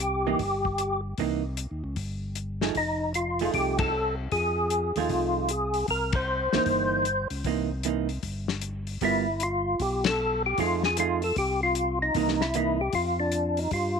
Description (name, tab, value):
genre	soul jazz organ trio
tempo	153 BPM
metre	4/4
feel	swing 64% on 8ths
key	unclear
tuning	A4 = 440 Hz
part	percussive tonewheel organ	melody	0.0-14.0 s	D4 to C5	-26 LUFS	left 1 dB	slow rotary speaker, chorus vibrato
part	tonewheel organ	bass	0.0-14.0 s	F1 to G2	-32 LUFS	equal	overdrive, slow rotary speaker
part	warm soul drum kit	drums	0.0-13.8 s	hi-hat, kick drum, ride cymbal, snare drum	-32 LUFS	left 6 dB	none
part	vintage hollow-body jazz guitar	accompaniment	0.3-12.8 s	E3 to A#4	-29 LUFS	right 15 dB	none
room	light reverb, studio reverb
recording	1960s-style stereo with parts hard left and right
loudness	-24 LUFS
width	side -6 dB against mid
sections	0.0-14.0 A section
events	band accent 3.7, 6.1, 10.0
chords	0.0 C7#9; 2.8 F7#9; 5.9 C7#9; 9.0 G7#9; 10.6 F7#9; 12.2 C7#9; 12.9 Dm/F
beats	0.01 0.40 0.79 | 1.19 1.58 1.97 2.36 | 2.75 3.14 3.54 3.93 | 4.32 4.71 5.10 5.49 | 5.88 6.28 6.67 7.06 | 7.45 7.84 8.23 8.62 | 9.02 9.41 9.80 10.19 | 10.58 10.97 11.37 11.76 | 12.15 12.54 12.93 13.33 | 13.72